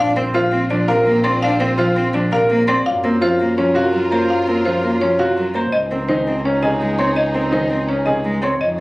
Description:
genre	classical, minimalist pattern music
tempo	167 BPM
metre	4/4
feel	straight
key	unclear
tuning	A4 = 440 Hz
part	buzzing marimba with hard mallets	melody	0.0-8.8 s	C5 to C6	-21 LUFS	left 1 dB	none
part	warm clarinet	second line	0.0-8.8 s	C4 to F4	-25 LUFS	equal	none
part	warm cello	accompaniment	0.0-8.6 s	C3 to D4	-21 LUFS	equal	none
part	warm symphonic string section	sustained chords	0.0-8.8 s	Eb4 to C5	-27 LUFS	equal	none
part	warm double bass	bass	0.0-8.8 s	Bb1 to Gb2	-24 LUFS	equal	none
part	clear grand piano	arpeggios	0.2-8.7 s	C4 to D5	-20 LUFS	equal	none
room	moderate large studio reverb, RT60 1.0 s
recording	recorded on a phone in the room, club reverb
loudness	-15 LUFS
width	side -20 dB against mid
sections	0.0-8.8 A section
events	none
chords	0.0 Bbsus2; 2.9 Gbmaj7; 5.7 Dbsus2

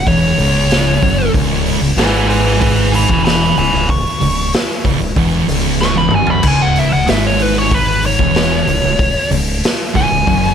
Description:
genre	stoner and doom metal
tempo	94 BPM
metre	4/4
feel	straight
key	C# minor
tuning	A4 = 440 Hz
part	fuzz lead guitar	melody	0.0-10.5 s	B4 to C#6	-17 LUFS	equal	distortion, tape echo
part	thick fuzz guitar	riff	0.0-10.5 s	C#2 to G#2	-18 LUFS	left 9 dB	distortion
part	thick fuzz guitar	riff	0.0-10.5 s	C#2 to G#2	-19 LUFS	right 12 dB	distortion
part	growling fingered electric bass	bass	0.0-10.5 s	C#1 to G#1	-20 LUFS	equal	overdrive
part	raw garage drum kit	drums	0.1-10.4 s	crash cymbal, hi-hat, kick drum, snare drum, toms	-17 LUFS	equal	none
room	light reverb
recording	none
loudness	-11 LUFS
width	side -8 dB against mid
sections	0.0-10.5 A section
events	lead electric guitar solo 0.0-10.5; drum fill 5.8-6.4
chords	0.0 C#m

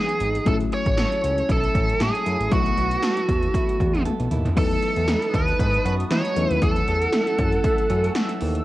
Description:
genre	1980s-style pop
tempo	117 BPM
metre	4/4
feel	swing 55% on 16ths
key	unclear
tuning	A4 = 439 Hz
part	biting lead guitar	melody	0.0-8.1 s	F#4 to C#5	-24 LUFS	right 1 dB	overdrive
part	FM electric piano	accompaniment	0.0-8.6 s	E3 to E4	-30 LUFS	left 6 dB	chorus, cassette tape
part	direct-recorded clean electric guitar	riff	0.0-8.6 s	E3 to A4	-33 LUFS	right 6 dB	wide subtle chorus, cassette tape
part	80s electronic pad drums	drums	0.1-8.6 s	crash cymbal, hi-hat, kick drum, snare drum, toms	-24 LUFS	equal	gated reverb on snare and toms, overdrive, cassette tape
part	fat analog bass	bass	0.2-8.6 s	G#1 to E3	-25 LUFS	equal	none
part	warm analog pad	sustained chords	5.1-8.6 s	A4 to E6	-32 LUFS	equal	chorus, cassette tape
room	moderate studio reverb, RT60 0.6 s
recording	home recording on cassette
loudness	-19 LUFS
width	side -16 dB against mid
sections	0.0-4.6 A section; 4.6-8.6 B section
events	drum fill 4.1-4.6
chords	0.5 A6; 2.5 B7sus4; 4.6 B7; 6.4 F#m7

